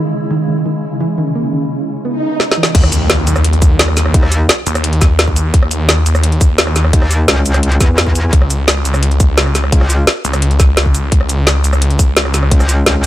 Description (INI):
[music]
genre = dark technical drum and bass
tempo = 172 BPM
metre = 4/4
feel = straight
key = unclear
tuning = A4 = 440 Hz
[part]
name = swarming drone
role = sustained chords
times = 0.0-2.0 s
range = Db3 to Fb4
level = -21 LUFS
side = equal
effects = built-in reverb, sidechain pumping
[part]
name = soft round pluck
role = arpeggios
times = 0.0-2.6 s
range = Eb3 to Eb4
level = -18 LUFS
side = right 2 dB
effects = wide subtle chorus, sidechain pumping, digital delay
[part]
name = swell and impact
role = sound effects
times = 2.1-4.1 s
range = none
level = -20 LUFS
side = equal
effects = none
[part]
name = drum and bass drum kit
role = drums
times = 2.4-13.1 s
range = crash cymbal, hi-hat, rim click, shaker, snare drum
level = -14 LUFS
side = equal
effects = none
[part]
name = snarling distorted saw bass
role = bass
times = 2.7-12.5 s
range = Db2 to Eb2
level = -13 LUFS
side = equal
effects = distortion, tube saturation, sidechain pumping
[part]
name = electronic kick drum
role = drums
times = 2.7-12.6 s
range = none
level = -10 LUFS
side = equal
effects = none
[part]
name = metallic wobble bass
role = bass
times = 4.1-4.5, 6.9-10.1, 12.5-13.1 s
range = Db2 to Fb2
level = -12 LUFS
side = equal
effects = distortion, chorus
[sound]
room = little or no reverb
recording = none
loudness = -10 LUFS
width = side -14 dB against mid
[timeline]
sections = 0.0-2.7 A section; 2.7-13.1 B section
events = swell 2.1-2.7; drum fill 2.4-2.7; drop 2.7-13.1; impact 2.7-4.1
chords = 0.0 Dbm; 2.7 N.C.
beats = 0.31 0.66 1.00 | 1.35 1.70 2.05 2.40 | 2.75 3.10 3.44 3.79 | 4.14 4.49 4.84 5.19 | 5.54 5.89 6.24 6.58 | 6.93 7.28 7.63 7.98 | 8.33 8.68 9.03 9.38 | 9.72 10.07 10.42 10.77 | 11.12 11.47 11.82 12.17 | 12.52 12.86